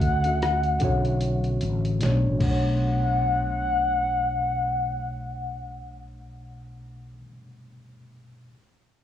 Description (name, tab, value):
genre	R&B, neo-soul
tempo	75 BPM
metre	4/4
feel	swing 61% on 16ths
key	B minor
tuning	A4 = 437 Hz
part	gliding portamento lead	melody	0.0-6.8 s	F#5	-26 LUFS	left 2 dB	chorus, cassette tape, plate reverb, analog delay
part	tine electric piano	accompaniment	0.0-8.5 s	B2 to E5	-31 LUFS	left 1 dB	medium stereo tremolo, cassette tape, plate reverb
part	mellow fretless electric bass	bass	0.0-7.2 s	A1 to D2	-27 LUFS	equal	lush chorus
part	boom bap sampler-style drum kit	drums	0.0-2.6 s	crash cymbal, hi-hat, kick drum, rim click, snare drum	-30 LUFS	equal	cassette tape
room	light reverb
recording	home recording on cassette, studio reverb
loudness	-22 LUFS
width	side -10 dB against mid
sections	0.0-2.8 A section; 2.8-6.0 B section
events	tine electric piano fill 1.6-2.8; drum fill 2.0-2.8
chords	0.0 Dmaj9; 2.0 Bm9